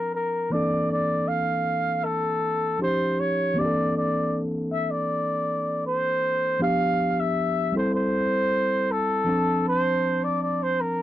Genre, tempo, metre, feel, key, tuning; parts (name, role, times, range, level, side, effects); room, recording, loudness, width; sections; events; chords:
soul; 79 BPM; 4/4; straight; A4 = 440 Hz
breathy flugelhorn; melody; 0.0-11.0 s; A4 to F5; -24 LUFS; equal
mellow tine electric piano; accompaniment; 0.0-11.0 s; E3 to A5; -26 LUFS; equal
light reverb; dry, close 1970s-style studio recording; -22 LUFS; side -13 dB against mid
0.0-6.6 A section; 6.6-11.0 B section
0.0 C9sus4; 0.5 Bbmaj9#11; 2.8 Eb9; 3.6 C13; 6.6 G7; 7.8 Am7; 9.3 Dm7